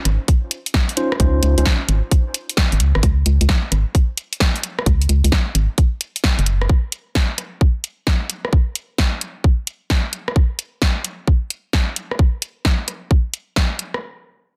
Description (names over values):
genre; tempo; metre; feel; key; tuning
UK garage, two-step garage; 131 BPM; 4/4; swing 66% on 16ths; Db major; A4 = 440 Hz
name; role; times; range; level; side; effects
organ-like FM bass; bass; 0.1-6.7 s; Gb1 to Db2; -18 LUFS; equal; none
punchy analog drum machine; drums; 0.1-14.0 s; hi-hat, rim click, snare drum; -24 LUFS; equal; none
electronic kick drum; drums; 0.3-13.7 s; none; -18 LUFS; equal; none
mellow tine electric piano; stabs; 1.0-1.6 s; Db4 to C5; -27 LUFS; equal; low-pass filter, dub echo
room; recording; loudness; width
little or no reverb; dense, heavily limited modern master; -19 LUFS; mono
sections
0.0-14.0 A section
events
filter sweep on tine electric piano 0.0-3.0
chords
0.0 Db5; 6.5 N.C.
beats
0.28 0.74 | 1.20 1.66 2.11 2.57 | 3.03 3.49 3.95 4.40 | 4.86 5.32 5.78 6.24 | 6.69 7.15 7.61 8.07 | 8.53 8.98 9.44 9.90 | 10.36 10.82 11.27 11.73 | 12.19 12.65 13.11 13.56